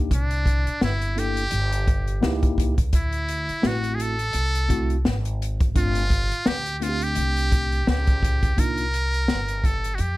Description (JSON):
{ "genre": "hip hop, jazz-hop", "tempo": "85 BPM", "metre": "4/4", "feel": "swing 58% on 16ths", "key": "unclear", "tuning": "A4 = 442 Hz", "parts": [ { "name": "mellow tine electric piano", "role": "accompaniment", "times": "0.0-8.8 s", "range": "A3 to A4", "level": "-28 LUFS", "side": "left 1 dB", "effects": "slow stereo tremolo" }, { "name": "upright bass", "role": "bass", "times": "0.0-10.2 s", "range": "G1 to F2", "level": "-25 LUFS", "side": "equal", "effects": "none" }, { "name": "trumpet with metal mute", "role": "melody", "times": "0.1-10.2 s", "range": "D4 to Bb4", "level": "-26 LUFS", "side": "equal", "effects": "none" }, { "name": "open jazz drum kit", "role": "drums", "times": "0.1-10.2 s", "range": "hi-hat, kick drum, snare drum", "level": "-23 LUFS", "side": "equal", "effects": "none" } ], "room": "little or no reverb", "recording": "none", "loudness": "-20 LUFS", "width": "side -18 dB against mid", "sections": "0.0-8.6 A section; 8.6-10.2 B section", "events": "none", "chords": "0.1 C13; 2.2 C#dim7; 2.9 D9; 5.8 G9sus4; 8.6 Cm11" }